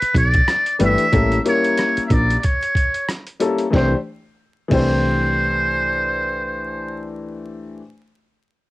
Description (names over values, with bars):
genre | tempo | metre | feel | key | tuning
hip hop, jazz-hop | 92 BPM | 4/4 | swing 58% on 16ths | C major | A4 = 441 Hz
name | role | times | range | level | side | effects
trumpet with metal mute | melody | 0.0-7.1 s | B4 to E5 | -20 LUFS | right 1 dB | cassette tape
woody fretless electric bass | bass | 0.0-7.8 s | G1 to C2 | -20 LUFS | equal | transformer saturation
boom bap sampler-style drum kit | drums | 0.0-4.9 s | crash cymbal, hi-hat, kick drum, rim click, snare drum | -22 LUFS | equal | cassette tape
clear upright piano | accompaniment | 0.8-7.8 s | E3 to C5 | -21 LUFS | left 3 dB | none
room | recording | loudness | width
light reverb | home recording on cassette, vinyl crackle | -16 LUFS | side -18 dB against mid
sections
0.0-3.7 A section; 3.7-6.3 B section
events
none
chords
0.0 Cmaj9 (rootless); 1.1 A7b9; 3.7 Cadd9